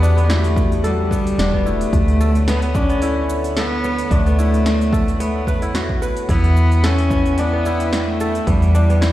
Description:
organic downtempo; 110 BPM; 4/4; swing 55% on 16ths; E dorian; A4 = 440 Hz
rich cello; melody; 0.0-9.1 s; F#3 to C#4; -21 LUFS; equal; tape echo
airy breathy pad; sustained chords; 0.0-9.1 s; D3 to G5; -28 LUFS; equal; chorus, sidechain pumping
kora; arpeggios; 0.0-9.1 s; B3 to B4; -24 LUFS; left 1 dB; digital delay
woody FM bass; bass; 0.0-9.1 s; E1 to E2; -18 LUFS; equal; sidechain pumping
deep house drum kit; drums; 0.0-9.1 s; hi-hat, shaker, snare drum; -27 LUFS; equal
electronic kick drum; drums; 0.6-8.6 s; -20 LUFS; equal
light reverb, digital ambience; played on a big sound system in a bare room, stone room reverb; -15 LUFS; side -14 dB against mid
0.0-9.1 A section
0.0 Em9; 1.9 Dmaj7; 6.3 Em9
0.29 0.84 1.38 | 1.93 2.47 3.02 3.56 | 4.11 4.66 5.20 5.75 | 6.29 6.84 7.38 7.93 | 8.47 9.02

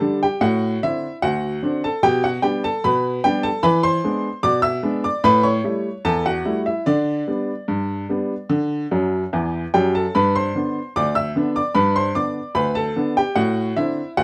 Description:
ragtime piano; 74 BPM; 2/4; straight; G major; A4 = 443 Hz
clear upright piano; solo; 0.0-14.2 s; D2 to E6; -20 LUFS; equal
light reverb; dark, warm production; -20 LUFS; mono
0.0-14.2 A section
upright piano fill 8.9-10.1
0.4 D7/A; 2.0 G/B; 3.6 E7; 5.3 A7; 6.9 G/D; 8.5 D; 10.1 G; 13.4 D7/A
| 0.42 1.23 | 2.04 2.84 | 3.65 4.45 | 5.26 6.06 | 6.88 7.69 | 8.51 9.32 | 10.13 10.95 | 11.76 12.57 | 13.38 14.18

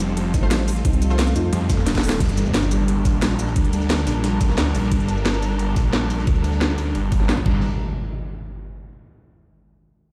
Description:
dark technical drum and bass; 177 BPM; 4/4; straight; G minor; A4 = 441 Hz
clear symphonic string section; sustained chords; 0.0-7.6 s; F3 to Bb4; -32 LUFS; equal; sidechain pumping
felt-muted upright piano; arpeggios; 0.0-4.9 s; G3 to Eb4; -29 LUFS; equal; sidechain pumping, dub echo
orchestra-hit-like synth stab; stabs; 0.0-2.2 s; A3 to C5; -35 LUFS; equal
snarling distorted saw bass; bass; 0.0-7.6 s; Eb1 to F2; -25 LUFS; equal; overdrive, sidechain pumping
breakbeat sampler-style drum kit; drums; 0.0-7.4 s; hi-hat, ride cymbal, snare drum; -37 LUFS; equal; high-pass filter on cymbals, high-pass filter on snare, high-pass filter on hats
drum and bass drum kit; drums; 0.0-7.5 s; crash cymbal, hi-hat, shaker, snare drum; -27 LUFS; equal; low-pass filter on hats, low-pass filter on perc, low-pass filter on snare, low-pass filter on cymbals
vowel-sweep wobble bass; bass; 0.3-1.5 s; A1 to F2; -22 LUFS; equal; chorus
electronic kick drum; drums; 0.3-7.5 s; -23 LUFS; equal; overdrive
impact; sound effects; 2.2-3.6, 7.5-8.8 s; -30 LUFS; equal
light reverb, digital ambience; played on a big sound system in a bare room, stone room reverb; -20 LUFS; mono
0.0-2.2 A section; 2.2-7.6 B section; 7.6-9.0 C section
drop 0.0-2.2; drum fill 1.9-2.2; impact 2.2-3.6
0.0 F; 2.2 Gm; 7.6 N.C.
0.17 0.51 | 0.85 1.19 1.53 1.86 | 2.20 2.54 2.88 3.22 | 3.56 3.90 4.24 4.58 | 4.92 5.25 5.59 5.93 | 6.27 6.61 6.95 7.29 | 7.63 7.97 8.31 8.64

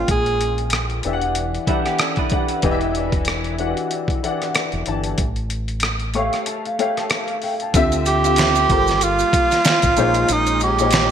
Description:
R&B, neo-soul; 94 BPM; 4/4; swing 57% on 16ths; D minor from 7.7 s; A4 = 438 Hz
breathy tenor saxophone; melody; 0.0-0.7, 8.1-11.1 s; Eb4 to Ab4; -18 LUFS; right 3 dB; digital delay
warm upright piano; accompaniment; 0.0-11.1 s; Bb2 to C#6; -22 LUFS; left 4 dB; ensemble chorus
deep dub fingered electric bass; bass; 0.0-11.1 s; E1 to D2; -24 LUFS; equal
dusty soul sampler-style drum kit; drums; 0.1-11.1 s; hi-hat, kick drum, rim click, snare drum; -21 LUFS; equal; gated reverb
electric guitar through a small old amp; second line; 1.7-3.1 s; G3 to B4; -28 LUFS; right 8 dB; analog chorus, digital delay
warm chamber string section; sustained chords; 7.7-11.1 s; F3 to E5; -30 LUFS; right 1 dB
maracas and finger snaps; percussion; 7.7-11.1 s; -28 LUFS; right 14 dB
moderate plate reverb, RT60 1.3 s; bright 1980s-style digital production; -17 LUFS; side -8 dB against mid
0.0-7.7 A section; 7.7-11.1 B section
upright piano fill 5.8-7.7; kick muted 6.5-7.7
0.0 Bbm9; 1.0 Em9; 5.2 A7b13; 7.7 Dm11; 8.7 Gm11; 10.0 Bbm11
| 0.07 0.71 1.35 1.99 | 2.63 3.27 3.90 4.54 | 5.18 5.82 6.46 7.10 | 7.74 8.37 9.01 9.65 | 10.29 10.93

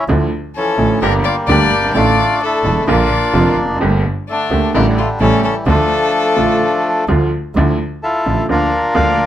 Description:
tango; 129 BPM; 4/4; rubato; D harmonic minor; A4 = 440 Hz
bandoneon; melody; 0.0-9.3 s; D3 to F5; -16 LUFS; left 1 dB
bright upright piano; accompaniment; 0.1-9.1 s; E1 to G4; -17 LUFS; right 2 dB
warm double bass; bass; 0.1-9.1 s; E1 to D2; -18 LUFS; right 1 dB
clear violin; second line; 0.6-7.0 s; D4 to D5; -19 LUFS; left 4 dB
light reverb; close, detailed microphones; -12 LUFS; side -11 dB against mid
0.0-7.6 A section; 7.6-9.3 A section
0.1 Dmadd9; 1.0 Gm; 2.0 Asus4; 2.9 Bb; 3.8 Gmadd9; 4.7 A7sus4; 5.2 A7; 5.7 Dm; 7.6 Dmadd9; 8.5 Bb/D
| 0.08 0.55 1.02 1.49 | 1.96 2.42 2.89 3.35 | 3.82 4.28 4.75 5.21 | 5.68 6.14 6.61 7.08 | 7.55 8.02 8.49 8.95

